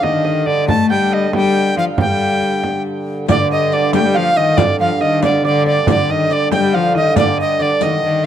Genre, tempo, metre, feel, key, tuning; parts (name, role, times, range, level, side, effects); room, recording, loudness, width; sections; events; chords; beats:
medieval dance; 92 BPM (dotted quarters); 6/8; straight; A4 = 440 Hz
bright reedy soprano recorder; melody; 0.0-8.3 s; D5 to A5; -17 LUFS; right 1 dB
Celtic harp; second line; 0.0-8.3 s; D5 to A5; -22 LUFS; right 3 dB
rich viola da gamba; second line; 0.0-8.3 s; D3 to A3; -18 LUFS; left 5 dB
hand-pumped harmonium; drone; 0.0-8.3 s; G2 to D3; -22 LUFS; right 3 dB
frame drum; percussion; 0.0-8.1 s; -20 LUFS; right 4 dB
riq; percussion; 3.3-8.0 s; -23 LUFS; left 15 dB
little or no reverb; dry, close 1970s-style studio recording; -13 LUFS; side -10 dB against mid
0.0-3.3 A section; 3.3-8.3 B section
0.03 | 0.69 1.34 | 1.99 2.64 | 3.29 3.94 | 4.59 5.23 | 5.88 6.53 | 7.17 7.82